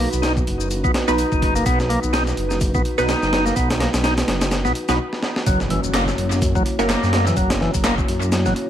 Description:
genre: breakbeat, breaks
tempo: 126 BPM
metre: 4/4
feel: swing 57% on 16ths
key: F# mixolydian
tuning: A4 = 440 Hz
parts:
  - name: dark analog pad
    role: sustained chords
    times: 0.0-8.7 s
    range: A#3 to C#5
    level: -26 LUFS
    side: equal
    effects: chorus, sidechain pumping
  - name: bright tonewheel organ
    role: riff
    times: 0.0-8.5 s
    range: E3 to D#4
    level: -23 LUFS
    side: equal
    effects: slow rotary speaker, tube saturation, tape echo
  - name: dark detuned saw bass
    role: bass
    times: 0.0-8.5 s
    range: F#1 to F#2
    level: -23 LUFS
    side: equal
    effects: tube saturation
  - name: breakbeat sampler-style drum kit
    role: drums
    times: 0.1-8.7 s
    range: hi-hat, kick drum, snare drum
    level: -22 LUFS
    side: equal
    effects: studio reverb
  - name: electronic shaker and handclaps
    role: drums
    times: 0.1-8.5 s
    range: none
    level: -30 LUFS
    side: left 2 dB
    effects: studio reverb, tape echo
  - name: filtered dub chord stab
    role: stabs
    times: 1.1-6.9 s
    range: B3 to B4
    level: -25 LUFS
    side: right 2 dB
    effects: phaser, tape echo
  - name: impact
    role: sound effects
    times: 5.5-7.4 s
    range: none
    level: -30 LUFS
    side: equal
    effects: none
room: light reverb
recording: echo-heavy mix, vinyl crackle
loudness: -17 LUFS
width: side -10 dB against mid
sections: 0.0-5.5 A section; 5.5-8.7 B section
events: break 5.0-5.5; drum fill 5.1-5.5; drop 5.5-8.7; impact 5.5-7.4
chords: 0.0 B; 5.5 F#7

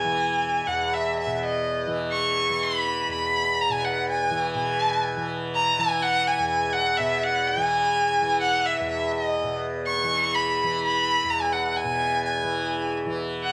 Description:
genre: indian classical, Hindustani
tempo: 124 BPM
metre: 4/4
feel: straight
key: E raga yaman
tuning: A4 = 440 Hz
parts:
  - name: rich violin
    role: melody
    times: 0.0-13.5 s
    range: D#5 to C#6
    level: -25 LUFS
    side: equal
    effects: cassette tape
  - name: tanpura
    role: drone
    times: 0.0-13.5 s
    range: E2 to E3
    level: -31 LUFS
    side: equal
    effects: cassette tape
room: moderate lush hall reverb, RT60 2.2 s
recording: home recording on cassette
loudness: -24 LUFS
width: mono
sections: 0.0-4.6 A section; 4.6-13.5 B section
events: none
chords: none

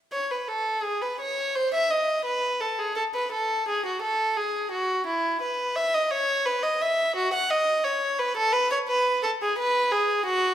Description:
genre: classical, baroque-style suite movement for unaccompanied violin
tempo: 86 BPM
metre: 4/4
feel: rubato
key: unclear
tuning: A4 = 440 Hz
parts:
  - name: warm violin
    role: solo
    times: 0.1-10.5 s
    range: E4 to F#5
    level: -23 LUFS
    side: equal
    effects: none
room: moderate recital hall reverb, RT60 1.4 s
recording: minimal, uncompressed stereo recording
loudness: -23 LUFS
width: side -11 dB against mid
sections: 0.1-10.5 A section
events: none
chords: none

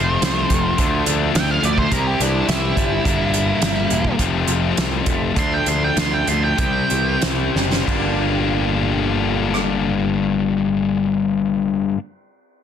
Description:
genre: quiet-loud alternative rock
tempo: 90-107 BPM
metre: 4/4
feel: straight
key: G dorian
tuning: A4 = 441 Hz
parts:
  - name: octave-fuzz lead guitar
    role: melody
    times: 0.0-7.2 s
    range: D4 to C6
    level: -23 LUFS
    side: right 5 dB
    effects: distortion, tape echo
  - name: electric guitar through a small old amp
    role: arpeggios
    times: 0.0-12.0 s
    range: F2 to G4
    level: -28 LUFS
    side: right 6 dB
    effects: ensemble chorus
  - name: sludgy distorted guitar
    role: riff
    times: 0.0-12.0 s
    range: F2 to E4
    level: -20 LUFS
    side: left 8 dB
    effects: overdrive
  - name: overdriven picked electric bass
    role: bass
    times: 0.0-11.9 s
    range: E1 to D2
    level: -24 LUFS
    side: right 1 dB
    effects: none
  - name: loose indie drum kit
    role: drums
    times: 0.2-9.7 s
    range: hi-hat, kick drum, ride cymbal, rim click, snare drum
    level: -23 LUFS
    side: right 1 dB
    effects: soft clipping on snare
room: light reverb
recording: dense, heavily limited modern master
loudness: -16 LUFS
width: side -8 dB against mid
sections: 0.0-7.9 A section; 7.9-10.5 B section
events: lead electric guitar solo 0.0-7.9; slowing down 3.0-7.9; drum fill 7.5-7.9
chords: 0.0 F; 0.8 Dm; 1.9 C; 3.0 Gm; 4.2 F; 5.4 Dm; 6.6 C; 7.9 Gm

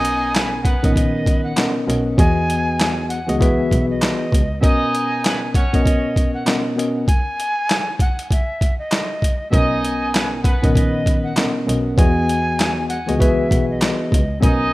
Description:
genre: hip hop, boom-bap hip-hop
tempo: 98 BPM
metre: 4/4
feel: swing 60% on 16ths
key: B major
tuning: A4 = 440 Hz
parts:
  - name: breathy bright jazz flute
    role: melody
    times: 0.0-14.7 s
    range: D#5 to G#5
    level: -25 LUFS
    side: equal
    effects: high-pass filter, low-pass filter, digital delay
  - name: mellow tine electric piano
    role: accompaniment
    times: 0.0-14.7 s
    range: B2 to D#5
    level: -21 LUFS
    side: left 1 dB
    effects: medium stereo tremolo, high-pass filter, low-pass filter
  - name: clear trumpet section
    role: stabs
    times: 0.0-14.7 s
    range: B3 to D#5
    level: -25 LUFS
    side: right 1 dB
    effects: high-pass filter, low-pass filter, digital delay
  - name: rich double bass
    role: bass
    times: 0.0-4.5, 9.5-14.7 s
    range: A#1 to E2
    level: -24 LUFS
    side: equal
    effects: none
  - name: boom bap sampler-style drum kit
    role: drums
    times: 0.0-14.6 s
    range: handclaps, hi-hat, kick drum, snare drum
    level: -18 LUFS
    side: equal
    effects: none
room: light reverb, small room reverb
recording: rough home demo mix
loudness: -16 LUFS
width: side -18 dB against mid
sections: 0.0-14.7 A section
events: none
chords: 0.0 Bmaj7; 2.2 Emaj7; 4.6 Bmaj7; 7.1 N.C.; 9.5 Bmaj7; 12.0 Emaj7

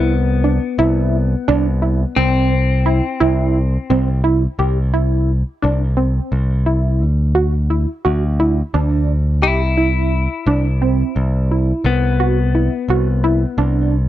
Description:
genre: progressive instrumental, progressive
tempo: 174 BPM (eighths)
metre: 7/8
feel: straight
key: C lydian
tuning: A4 = 440 Hz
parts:
  - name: clean electric guitar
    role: second line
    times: 0.0-4.2, 9.4-13.9 s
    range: B3 to E4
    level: -22 LUFS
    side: left 8 dB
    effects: spring reverb
  - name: tight sequenced synth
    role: arpeggios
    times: 0.0-14.0 s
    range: C4 to G4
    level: -19 LUFS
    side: right 3 dB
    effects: chorus
  - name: modern bright picked electric bass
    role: bass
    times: 0.0-14.1 s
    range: C2 to D2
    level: -16 LUFS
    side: equal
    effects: none
room: little or no reverb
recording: dry, close 1970s-style studio recording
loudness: -14 LUFS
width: side -13 dB against mid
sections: 0.0-4.6 A section; 4.6-14.1 B section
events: none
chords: 0.0 Cmaj7; 2.2 C; 7.0 Dadd9; 9.4 C; 11.9 Cmaj7

